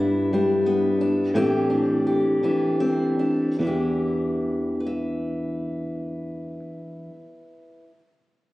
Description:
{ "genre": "folk", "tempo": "74-90 BPM", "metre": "3/4", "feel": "straight", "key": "E minor", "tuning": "A4 = 440 Hz", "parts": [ { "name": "fingerpicked steel-string acoustic guitar", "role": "accompaniment", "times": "0.0-7.9 s", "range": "E2 to E5", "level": "-22 LUFS", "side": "left 1 dB", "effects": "none" }, { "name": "sustaining fretless electric bass", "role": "bass", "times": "0.0-6.6 s", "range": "E2 to A2", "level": "-28 LUFS", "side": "right 1 dB", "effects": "wide subtle chorus" } ], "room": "light reverb", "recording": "recorded on a phone in the room, studio reverb, compression", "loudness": "-21 LUFS", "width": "side -17 dB against mid", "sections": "0.0-3.6 A section; 3.6-8.5 B section", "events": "slowing down 0.0-3.6", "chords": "0.0 G6; 1.3 Am7; 3.6 Em7" }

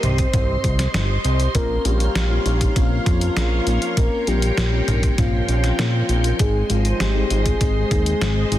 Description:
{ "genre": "synthwave", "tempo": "99 BPM", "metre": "4/4", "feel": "straight", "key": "unclear", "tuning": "A4 = 440 Hz", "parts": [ { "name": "soft octave-layered synth lead", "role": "melody", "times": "0.0-8.6 s", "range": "F4 to C5", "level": "-26 LUFS", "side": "left 1 dB", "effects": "chorus, tape echo" }, { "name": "string machine, full ensemble", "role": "sustained chords", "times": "0.0-8.6 s", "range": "Ab3 to C6", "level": "-27 LUFS", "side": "equal", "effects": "ensemble chorus, sidechain pumping" }, { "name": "fat analog bass", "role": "bass", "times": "0.0-8.6 s", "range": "G1 to Bb2", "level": "-20 LUFS", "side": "equal", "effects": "none" }, { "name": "detuned 8-bit digital drum machine", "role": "drums", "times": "0.0-8.6 s", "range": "hi-hat, snare drum, toms", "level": "-26 LUFS", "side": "left 1 dB", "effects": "none" }, { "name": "electronic kick drum", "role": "drums", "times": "0.2-8.0 s", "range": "none", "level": "-21 LUFS", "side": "equal", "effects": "none" }, { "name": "FM electric piano with soft pad layer", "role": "stabs", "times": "1.5-8.6 s", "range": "Ab3 to C5", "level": "-28 LUFS", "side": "left 5 dB", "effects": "chorus, tremolo, tape echo" } ], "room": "little or no reverb", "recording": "dense, heavily limited modern master", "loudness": "-17 LUFS", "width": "side -13 dB against mid", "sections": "0.0-8.6 A section", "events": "none", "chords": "0.0 Cm; 1.5 Bbmadd9; 6.4 Ab" }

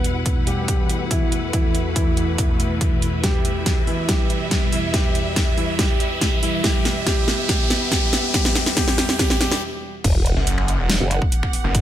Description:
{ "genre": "heavy wobble dubstep", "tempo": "141 BPM", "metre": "4/4", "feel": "half-time", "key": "E minor", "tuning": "A4 = 440 Hz", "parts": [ { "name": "dark baby grand piano", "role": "melody", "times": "0.0-9.6 s", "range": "E3 to B4", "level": "-26 LUFS", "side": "right 1 dB", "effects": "digital delay" }, { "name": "evolving wavetable pad", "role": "sustained chords", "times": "0.0-11.8 s", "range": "E2 to G4", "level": "-28 LUFS", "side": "equal", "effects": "phaser, built-in reverb, sidechain pumping" }, { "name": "dubstep drum kit", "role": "drums", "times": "0.0-11.8 s", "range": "crash cymbal, finger snaps, hi-hat, snare drum", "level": "-23 LUFS", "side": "equal", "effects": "none" }, { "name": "riser and sub drop", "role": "sound effects", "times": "0.4-11.7 s", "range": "none", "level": "-28 LUFS", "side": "equal", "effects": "none" }, { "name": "warm studio string section", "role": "texture", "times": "0.0-11.8 s", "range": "E4 to F#5", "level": "-30 LUFS", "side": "equal", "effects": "sidechain pumping" }, { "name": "electronic kick drum", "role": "drums", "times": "0.3-11.8 s", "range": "none", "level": "-21 LUFS", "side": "equal", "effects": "none" }, { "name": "formant-sweep wobble bass", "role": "bass", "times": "10.0-11.2 s", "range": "E1 to F#1", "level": "-21 LUFS", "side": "equal", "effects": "chorus, overdrive" }, { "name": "snarling distorted saw bass", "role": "bass", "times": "10.4-11.8 s", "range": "E1 to F#1", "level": "-20 LUFS", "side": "equal", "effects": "distortion, overdrive" } ], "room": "light reverb", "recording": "none", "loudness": "-17 LUFS", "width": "side -11 dB against mid", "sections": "0.0-10.0 A section; 10.0-11.8 B section", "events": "build-up 0.0-10.0; filter sweep on ambient pad 0.0-10.0; riser 0.4-9.6; drum fill 3.2-9.6; stop 9.6-10.0; drop 10.0-11.8; impact 10.0-11.7", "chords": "0.0 Em" }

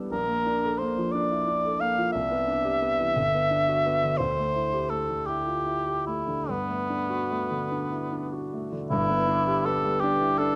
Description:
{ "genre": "classical, impressionist duo for cor anglais and grand piano", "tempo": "48-61 BPM (dotted quarters)", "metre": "6/8", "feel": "rubato", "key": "G mixolydian", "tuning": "A4 = 442 Hz", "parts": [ { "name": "warm baby grand piano", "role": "accompaniment", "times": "0.0-10.6 s", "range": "G1 to A4", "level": "-31 LUFS", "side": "equal", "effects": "none" }, { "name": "mellow cor anglais", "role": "melody", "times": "0.1-10.6 s", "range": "B3 to F5", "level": "-28 LUFS", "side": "equal", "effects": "none" } ], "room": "moderate recital hall reverb, RT60 1.7 s", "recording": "close, detailed microphones", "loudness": "-26 LUFS", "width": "mono", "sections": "0.0-8.9 A section; 8.9-10.6 B section", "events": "none", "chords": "0.1 Bbmaj7; 2.1 Cmaj9; 3.1 Gmaj7; 4.2 D9sus4; 6.5 Gmaj9; 8.9 G6" }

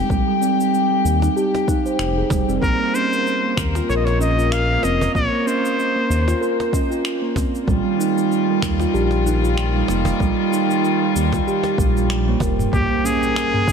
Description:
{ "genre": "organic downtempo", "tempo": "95 BPM", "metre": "4/4", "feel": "swing 56% on 16ths", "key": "Bb dorian", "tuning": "A4 = 440 Hz", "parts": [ { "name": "warm chamber string section", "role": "sustained chords", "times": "0.0-13.7 s", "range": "Eb3 to G4", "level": "-24 LUFS", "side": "left 7 dB", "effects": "vintage 12-bit sampler grit, sidechain pumping" }, { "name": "smooth synth bass", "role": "bass", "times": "0.0-13.7 s", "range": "F1 to Eb2", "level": "-21 LUFS", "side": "left 1 dB", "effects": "sidechain pumping" }, { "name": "steel tongue drum", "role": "arpeggios", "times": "0.1-13.6 s", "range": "G3 to C5", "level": "-20 LUFS", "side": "right 4 dB", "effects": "tape echo" }, { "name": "afro-pop drum kit", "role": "drums", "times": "0.1-13.7 s", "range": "finger snaps, shaker, toms", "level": "-29 LUFS", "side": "equal", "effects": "overdrive" }, { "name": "electronic kick drum", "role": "drums", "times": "0.1-13.7 s", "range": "none", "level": "-22 LUFS", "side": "left 1 dB", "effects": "overdrive" }, { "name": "cajon", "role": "percussion", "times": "0.1-12.9 s", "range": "none", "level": "-28 LUFS", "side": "right 3 dB", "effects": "none" }, { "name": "trumpet with straight mute", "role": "melody", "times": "2.6-6.7, 12.7-13.7 s", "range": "G4 to F5", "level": "-22 LUFS", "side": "left 1 dB", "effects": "digital delay" }, { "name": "impact", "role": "sound effects", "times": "12.7-13.7 s", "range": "none", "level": "-28 LUFS", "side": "left 1 dB", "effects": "none" } ], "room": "light reverb, studio reverb", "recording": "none", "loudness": "-16 LUFS", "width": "side -6 dB against mid", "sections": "0.0-12.7 A section", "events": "drum fill 12.1-12.7; impact 12.7-13.7", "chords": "0.0 Abmaj7 (rootless); 2.6 Bbmadd9; 7.7 Ebadd9; 12.7 Bbm" }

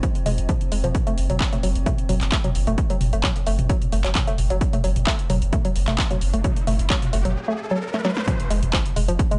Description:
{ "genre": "driving peak-time techno", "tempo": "131 BPM", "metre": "4/4", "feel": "straight", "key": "unclear", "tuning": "A4 = 442 Hz", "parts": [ { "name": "woody wave-folded pluck", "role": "riff", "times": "0.0-9.4 s", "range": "F3 to A3", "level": "-29 LUFS", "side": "equal", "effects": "chorus, tube saturation, sidechain pumping, digital delay" }, { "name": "saturated sub bass", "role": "bass", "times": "0.0-9.2 s", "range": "F1 to Gb1", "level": "-25 LUFS", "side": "equal", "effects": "overdrive, sidechain pumping, low-pass filter" }, { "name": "metallic inharmonic drone", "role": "drone", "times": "0.0-7.4 s", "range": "F3 to C4", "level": "-41 LUFS", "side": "equal", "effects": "chorus, built-in reverb, sidechain pumping" }, { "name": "electronic kick drum", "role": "drums", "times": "0.0-9.3 s", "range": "none", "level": "-25 LUFS", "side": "equal", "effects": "overdrive, studio reverb" }, { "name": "techno drum kit", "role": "drums", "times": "0.0-9.4 s", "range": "handclaps, hi-hat, snare drum, toms", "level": "-29 LUFS", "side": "equal", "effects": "overdrive, studio reverb" }, { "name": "riser and impact", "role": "sound effects", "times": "6.2-9.4 s", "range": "none", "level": "-35 LUFS", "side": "equal", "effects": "none" } ], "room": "digital ambience", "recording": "nothing above 11.0 kHz", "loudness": "-22 LUFS", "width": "mono", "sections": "0.0-8.3 A section; 8.3-9.4 B section", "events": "riser 6.2-8.3; drum fill 7.9-8.3; drop 8.3-9.4; impact 8.3-9.4", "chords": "0.0 Fm; 0.9 Gbm; 8.3 Fm" }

